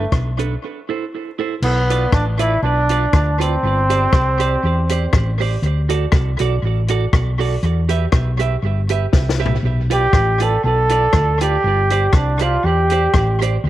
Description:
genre	ska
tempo	120 BPM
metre	4/4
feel	swing 54% on 8ths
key	unclear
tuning	A4 = 440 Hz
part	bright trombone	melody	0.0-5.4, 9.9-13.4 s	A3 to A4	-18 LUFS	right 1 dB	none
part	clean electric guitar	accompaniment	0.0-13.6 s	D4 to E5	-24 LUFS	right 8 dB	tape echo
part	hollow-body short-scale fingered electric bass	bass	0.0-13.7 s	G1 to E2	-18 LUFS	equal	none
part	compact cocktail drum kit	drums	0.1-13.5 s	crash cymbal, hi-hat, kick drum, rim click, snare drum, toms	-19 LUFS	left 1 dB	tape echo
room	light reverb, studio reverb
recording	1960s-style stereo, vinyl crackle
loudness	-15 LUFS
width	side -14 dB against mid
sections	0.0-1.6 A section; 1.6-13.7 B section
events	break 0.6-1.6; drum fill 9.1-9.6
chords	0.0 Gadd9 (rootless); 0.6 Am; 1.6 Bdim; 3.6 Gsus4; 5.6 D; 7.6 Em; 9.6 Bdim; 11.6 Gsus4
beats	0.12 0.62 1.12 | 1.63 2.13 2.63 3.13 | 3.63 4.13 4.63 5.13 | 5.63 6.13 6.63 7.13 | 7.63 8.13 8.63 9.13 | 9.63 10.13 10.64 11.14 | 11.64 12.14 12.64 13.14 | 13.65

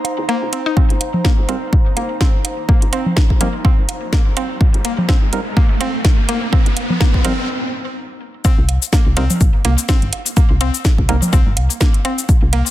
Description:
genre	minimal techno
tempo	125 BPM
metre	4/4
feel	swing 56% on 16ths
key	C minor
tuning	A4 = 440 Hz
part	house drum kit	drums	0.0-12.7 s	hi-hat, shaker, snare drum	-22 LUFS	left 1 dB	none
part	woodblock and congas	percussion	0.0-12.6 s	none	-26 LUFS	right 2 dB	dub echo
part	airy breathy pad	texture	0.0-7.5 s	Eb4 to Bb5	-28 LUFS	equal	chorus, sidechain pumping
part	woody FM bass	bass	0.2-12.6 s	G1 to Eb2	-19 LUFS	equal	sidechain pumping, high-pass filter
part	mallet-like synth pluck	riff	0.3-12.6 s	Bb3 to Eb4	-24 LUFS	left 1 dB	chorus, vintage 12-bit sampler grit, sidechain pumping, tape echo
part	electronic kick drum	drums	0.8-12.4 s	none	-13 LUFS	equal	none
part	riser	sound effects	3.0-7.5 s	none	-26 LUFS	right 1 dB	none
part	percussive organ stab	stabs	1.5-11.2 s	G3 to Bb4	-27 LUFS	right 2 dB	chorus, dub echo
room	little or no reverb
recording	dense, heavily limited modern master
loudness	-13 LUFS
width	side -14 dB against mid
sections	0.8-8.4 A section; 8.4-12.7 B section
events	build-up 0.8-8.4; filter sweep on synth arpeggio sound 0.8-8.4; filter sweep on synth stab 0.8-8.4; riser 3.0-7.5; break 7.5-8.4; drop 8.4-12.7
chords	0.0 Cm7; 8.4 C7(no3)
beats	0.29 | 0.77 1.25 1.73 2.21 | 2.69 3.17 3.65 4.13 | 4.61 5.09 5.57 6.05 | 6.53 7.01 7.49 7.97 | 8.45 8.93 9.41 9.89 | 10.37 10.85 11.33 11.81 | 12.29

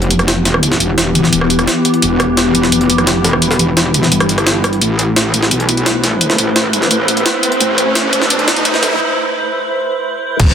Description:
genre	dark technical drum and bass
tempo	172 BPM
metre	4/4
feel	straight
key	unclear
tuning	A4 = 440 Hz
part	swarming drone	sustained chords	0.0-10.5 s	E3 to C5	-16 LUFS	left 1 dB	built-in reverb, sidechain pumping
part	metallic wobble bass	bass	0.0-10.5 s	E1 to B1	-17 LUFS	equal	chorus, overdrive, sidechain pumping
part	jungle sampler-style drum kit	drums	0.0-10.5 s	hi-hat, snare drum	-17 LUFS	equal	high-pass filter on hats, high-pass filter on snare
part	drum and bass drum kit	drums	0.1-10.5 s	crash cymbal, hi-hat, rim click	-16 LUFS	equal	soft clipping on snare
part	riser and impact	sound effects	6.1-10.5 s	none	-19 LUFS	right 1 dB	none
part	electronic kick drum	drums	10.4-10.5 s	none	-10 LUFS	equal	none
room	moderate lush hall reverb, RT60 1.6 s, digital ambience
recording	dense, heavily limited modern master, high-pass filter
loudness	-11 LUFS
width	side -8 dB against mid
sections	0.0-10.4 A section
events	build-up 0.0-10.4; riser 6.1-9.0; break 9.0-10.4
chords	0.0 Em; 4.8 Amadd9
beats	0.28 | 0.63 0.98 1.33 1.68 | 2.02 2.37 2.72 3.07 | 3.42 3.77 4.12 4.47 | 4.82 5.16 5.51 5.86 | 6.21 6.56 6.91 7.26 | 7.61 7.95 8.30 8.65 | 9.00 9.35 9.70 10.05 | 10.40

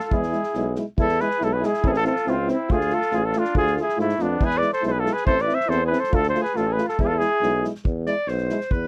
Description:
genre	balkan folk, Balkan brass band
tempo	140 BPM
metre	2/4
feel	straight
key	E phrygian dominant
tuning	A4 = 440 Hz
part	mellow cornet	melody	0.0-7.7 s	D4 to E5	-25 LUFS	equal	none
part	warm flugelhorn	second line	0.0-8.9 s	A3 to D5	-32 LUFS	equal	none
part	natural country drum kit	percussion	0.0-8.8 s	kick drum, snare drum	-28 LUFS	equal	none
part	mellow euphonium	accompaniment	0.1-8.6 s	G#3 to C4	-32 LUFS	equal	none
part	warm trombone	accompaniment	0.1-8.6 s	E4 to F4	-32 LUFS	equal	none
part	clear tuba	bass	0.1-8.9 s	A1 to G#2	-29 LUFS	equal	none
room	light reverb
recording	dry, close 1970s-style studio recording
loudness	-22 LUFS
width	mono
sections	1.0-7.8 A section; 7.8-8.9 B section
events	flugelhorn solo 7.8-8.9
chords	0.1 E; 1.8 Am; 2.7 Dm; 4.4 E; 5.3 Am; 6.1 Dm; 7.0 E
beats	| 0.11 0.54 | 0.97 1.40 | 1.83 2.26 | 2.69 3.12 | 3.55 3.98 | 4.41 4.83 | 5.26 5.70 | 6.12 6.55 | 6.99 7.42 | 7.85 8.28 | 8.71

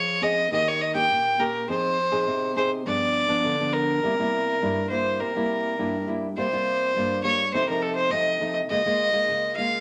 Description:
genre	samba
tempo	103 BPM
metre	4/4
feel	straight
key	F minor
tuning	A4 = 441 Hz
part	rich fiddle	melody	0.0-9.8 s	A4 to G5	-25 LUFS	equal	none
part	nylon-string guitar	accompaniment	0.0-9.8 s	G2 to Ab4	-30 LUFS	equal	none
room	wet studio reverb, RT60 0.8 s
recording	none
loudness	-24 LUFS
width	mono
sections	0.0-9.8 A section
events	none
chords	0.0 Dbmaj7/F; 0.5 Eb7; 1.7 Fm7; 2.9 G7; 4.0 C7; 6.4 C7sus4; 7.5 F7/C; 8.7 Bbm7/Db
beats	0.52 1.11 | 1.69 2.28 2.86 3.45 | 4.03 4.62 5.20 5.79 | 6.37 6.95 7.54 8.12 | 8.71 9.29

